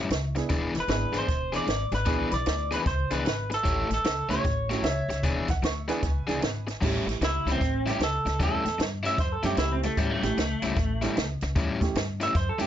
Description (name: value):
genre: electric blues shuffle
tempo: 152 BPM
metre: 4/4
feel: swing 63% on 8ths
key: A mixolydian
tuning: A4 = 440 Hz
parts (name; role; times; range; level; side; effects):
- overdriven electric guitar; riff; 0.0-12.7 s; A2 to C#5; -30 LUFS; left 4 dB; none
- upright bass; bass; 0.0-12.7 s; E1 to G2; -31 LUFS; equal; none
- compact cocktail drum kit; drums; 0.1-12.7 s; crash cymbal, hi-hat, kick drum, snare drum; -30 LUFS; equal; none
- warm upright piano; accompaniment; 0.4-12.7 s; G3 to G#4; -34 LUFS; right 7 dB; none
- electric guitar through a small old amp; melody; 0.8-12.7 s; G3 to E5; -29 LUFS; right 1 dB; none
- warm upright piano; second line; 4.8-6.7 s; B4 to C#6; -37 LUFS; right 3 dB; digital delay
room: little or no reverb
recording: nothing above 7.5 kHz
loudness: -24 LUFS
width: side -10 dB against mid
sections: 0.0-6.8 A section; 6.8-12.7 B section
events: clean electric guitar solo 6.8-12.7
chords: 0.0 A7; 0.5 E7; 3.7 A7; 5.2 E7; 6.8 A7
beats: 0.11 | 0.50 0.90 1.29 1.68 | 2.08 2.47 2.87 3.26 | 3.66 4.05 4.45 4.84 | 5.24 5.63 6.03 6.42 | 6.82 7.21 7.61 8.00 | 8.40 8.79 9.19 9.58 | 9.98 10.38 10.77 11.16 | 11.56 11.96 12.35